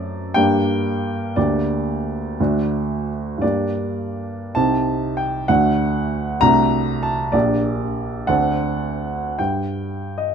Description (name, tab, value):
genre	classical, romantic character piece for solo piano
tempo	49-66 BPM (dotted quarters)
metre	6/8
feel	rubato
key	G minor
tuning	A4 = 440 Hz
part	clear baby grand piano	solo	0.0-10.3 s	Bb1 to Bb5	-18 LUFS	right 1 dB	none
room	light reverb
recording	close, detailed microphones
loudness	-18 LUFS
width	side -7 dB against mid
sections	0.0-10.3 A section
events	none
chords	0.4 Gm; 1.4 Gm/D; 2.4 D; 3.4 Gm; 4.5 Cm; 5.5 D; 6.4 D7/C; 7.3 Gm/Bb; 8.3 D7; 9.4 N.C.